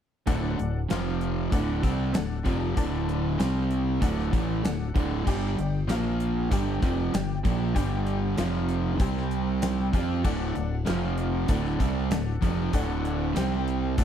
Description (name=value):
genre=classic rock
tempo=96 BPM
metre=4/4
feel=straight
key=unclear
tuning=A4 = 440 Hz
part: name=honky-tonk upright piano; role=accompaniment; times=0.3-14.0 s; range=F4 to A5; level=-37 LUFS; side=left 6 dB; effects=none
part: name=cranked stack guitar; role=riff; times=0.3-14.0 s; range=D2 to F4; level=-31 LUFS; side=left 11 dB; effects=overdrive
part: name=crunchy overdriven guitar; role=riff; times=0.3-14.0 s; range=D2 to F4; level=-29 LUFS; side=right 10 dB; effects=none
part: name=growling fingered electric bass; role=bass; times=0.3-14.0 s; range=D1 to F2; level=-30 LUFS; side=equal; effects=overdrive
part: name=gated 80s drum kit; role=drums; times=0.3-14.0 s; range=crash cymbal, hi-hat, kick drum, snare drum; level=-28 LUFS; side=equal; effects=none
room=small room ambience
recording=none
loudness=-24 LUFS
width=side -9 dB against mid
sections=0.3-14.0 A section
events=none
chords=0.3 D; 0.9 F5; 1.5 D; 3.4 C5; 4.0 D; 5.3 G5; 5.9 Bb5; 6.5 G5; 8.4 F5; 9.0 C5; 9.9 G5; 10.2 D; 10.9 F5; 11.5 D; 13.4 C5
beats=| 0.27 0.90 1.52 2.15 | 2.77 3.39 4.02 4.64 | 5.26 5.89 6.51 7.13 | 7.76 8.38 9.00 9.62 | 10.25 10.87 11.49 12.11 | 12.74 13.36 13.98